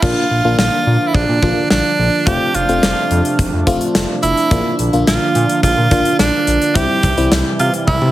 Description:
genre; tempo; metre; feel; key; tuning
synth-pop; 107 BPM; 4/4; straight; unclear; A4 = 441 Hz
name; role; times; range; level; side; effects
edgy tenor saxophone; melody; 0.0-8.1 s; D4 to G4; -17 LUFS; right 2 dB; digital delay
FM electric piano; accompaniment; 0.0-7.7 s; G3 to F4; -20 LUFS; left 2 dB; chorus
chorused pulse-width pad; sustained chords; 0.0-8.1 s; C3 to E4; -21 LUFS; right 2 dB; none
smooth synth bass; bass; 0.0-8.1 s; F1 to C3; -18 LUFS; equal; none
gated 80s drum kit; drums; 0.0-8.1 s; crash cymbal, hi-hat, kick drum, snare drum, toms; -18 LUFS; left 1 dB; none
room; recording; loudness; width
moderate lush hall reverb, RT60 2.1 s; heavily compressed radio sound; -12 LUFS; side -14 dB against mid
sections
0.0-8.1 A section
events
drum fill 7.9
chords
0.0 Bb; 2.3 F; 4.5 Bb; 6.8 C

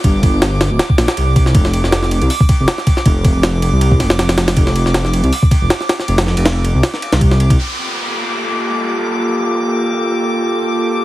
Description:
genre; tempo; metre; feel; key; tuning
drum and bass, jungle; 159 BPM; 4/4; swing 54% on 16ths; G minor; A4 = 440 Hz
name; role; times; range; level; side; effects
dark detuned saw bass; bass; 0.0-7.6 s; D1 to C2; -14 LUFS; equal; none
jungle sampler-style drum kit; drums; 0.0-7.6 s; hi-hat, kick drum, ride cymbal, snare drum; -14 LUFS; equal; none
drifting glass-harmonics texture; texture; 0.0-11.0 s; D6; -23 LUFS; equal; chorus, built-in reverb
airy breathy pad; sustained chords; 7.9-11.0 s; Bb3 to A4; -17 LUFS; equal; chorus
downlifter; sound effects; 7.6-10.6 s; none; -23 LUFS; equal; none
room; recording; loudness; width
moderate lush hall reverb, RT60 1.7 s; heavily compressed radio sound, multiband compression, vinyl crackle; -12 LUFS; side -16 dB against mid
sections
0.0-7.6 A section; 7.6-11.0 B section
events
none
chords
0.0 Gm; 1.6 F5; 7.6 Gm9

